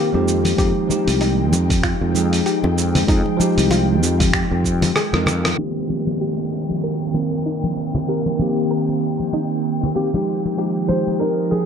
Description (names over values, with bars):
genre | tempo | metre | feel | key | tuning
sunset chillout | 96 BPM | 4/4 | swing 58% on 16ths | F minor | A4 = 440 Hz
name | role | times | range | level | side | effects
tine electric piano | accompaniment | 0.0-11.7 s | Eb3 to Bb4 | -22 LUFS | moving between left 2 dB and right 4 dB | auto-pan, vintage 12-bit sampler grit, digital delay
ethereal airy pad | sustained chords | 0.0-11.7 s | Eb3 to G5 | -25 LUFS | right 1 dB | ensemble chorus, built-in reverb
soft round pluck | arpeggios | 0.0-11.5 s | Eb4 to Bb4 | -29 LUFS | right 1 dB | none
sustaining fretless electric bass | bass | 0.1-5.5 s | C2 to F2 | -20 LUFS | equal | tube saturation
congas | percussion | 0.1-11.7 s | none | -25 LUFS | left 2 dB | none
dusty soul sampler-style drum kit | drums | 0.3-5.6 s | cabasa, finger snaps, hi-hat, rim click | -23 LUFS | right 1 dB | overdrive
electronic kick drum | drums | 0.6-4.8 s | none | -21 LUFS | equal | overdrive
downlifter | sound effects | 5.6-10.6 s | none | -32 LUFS | left 2 dB | none
dark grand piano | melody | 10.9-11.7 s | Ab4 to C5 | -21 LUFS | right 1 dB | none
room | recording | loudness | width
moderate plate reverb, RT60 1.6 s, digital ambience | dark, warm production, low-pass filter | -17 LUFS | side -7 dB against mid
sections
0.0-5.6 A section; 5.6-11.7 B section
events
drum fill 5.0-5.6; band accent 5.4-5.7; filter sweep 5.6-11.7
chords
0.3 Fm9; 5.6 Cm7; 10.3 Fm9